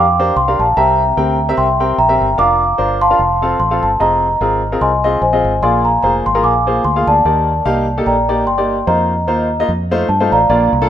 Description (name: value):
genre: uptempo gospel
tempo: 148 BPM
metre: 4/4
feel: swing 56% on 8ths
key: unclear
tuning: A4 = 440 Hz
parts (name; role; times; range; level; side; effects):
- large celesta; melody; 0.0-10.9 s; C5 to D6; -14 LUFS; equal; none
- bright baby grand piano; accompaniment; 0.0-10.9 s; Bb2 to G5; -18 LUFS; left 1 dB; none
- fingered electric bass; bass; 0.0-10.9 s; F1 to G2; -20 LUFS; right 1 dB; none
room: light reverb, studio reverb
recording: rough home demo mix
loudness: -12 LUFS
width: side -10 dB against mid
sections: 0.0-10.5 A section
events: none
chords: 0.0 Gm7; 0.8 C7; 2.4 Bb/F; 3.2 F; 4.0 Fm7; 5.6 Bb7; 7.2 Ebmaj7; 8.9 F7sus4; 9.7 F7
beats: 0.36 | 0.77 1.17 1.57 1.98 | 2.38 2.79 3.19 3.60 | 4.00 4.41 4.81 5.22 | 5.62 6.03 6.44 6.84 | 7.25 7.66 8.06 8.47 | 8.87 9.28 9.69 10.09 | 10.50